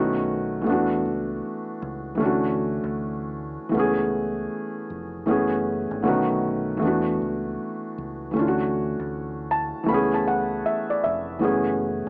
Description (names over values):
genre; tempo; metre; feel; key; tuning
lo-fi hip hop; 78 BPM; 4/4; swing 64% on 16ths; unclear; A4 = 438 Hz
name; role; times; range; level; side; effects
felt-muted upright piano; accompaniment; 0.0-12.1 s; D3 to B5; -25 LUFS; equal; cassette tape, low-pass filter
deep dub fingered electric bass; bass; 0.0-12.1 s; E#1 to E2; -37 LUFS; equal; none
room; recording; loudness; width
little or no reverb; dry, gritty hardware recording, cassette tape, small speaker sound; -25 LUFS; mono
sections
0.0-12.1 A section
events
felt piano fill 9.1-11.4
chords
0.0 B9; 0.7 E9sus4; 2.2 Dmaj9; 3.7 Amaj7/C#; 5.3 F#m11; 6.0 B9; 6.8 E9sus4; 8.3 Dmaj9; 9.9 Amaj7/C#; 11.4 F#m11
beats
0.66 1.43 | 2.20 2.96 3.73 4.50 | 5.27 6.04 6.81 7.58 | 8.35 9.12 9.89 10.66 | 11.43